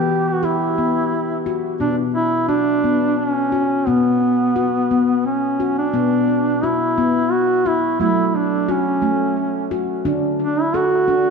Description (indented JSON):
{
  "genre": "world meditative, meditative tuned percussion",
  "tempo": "87 BPM",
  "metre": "3/4",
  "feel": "swing 55% on 16ths",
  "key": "B minor",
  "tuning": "A4 = 438 Hz",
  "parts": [
    { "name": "mellow duduk", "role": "melody", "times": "0.0-11.3 s", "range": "B3 to G4", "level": "-18 LUFS", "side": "right 2 dB", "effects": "tape echo" },
    { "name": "handpan", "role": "arpeggios", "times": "0.0-11.3 s", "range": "B2 to A4", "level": "-20 LUFS", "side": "left 3 dB", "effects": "tape echo" }
  ],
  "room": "wet echo chamber reverb, RT60 1.7 s, small room ambience",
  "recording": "dark, warm production",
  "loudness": "-16 LUFS",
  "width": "side -5 dB against mid",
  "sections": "0.0-5.9 A section; 5.9-11.3 B section",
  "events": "none",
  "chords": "0.0 Em; 1.8 B5; 8.0 F#m; 10.1 D"
}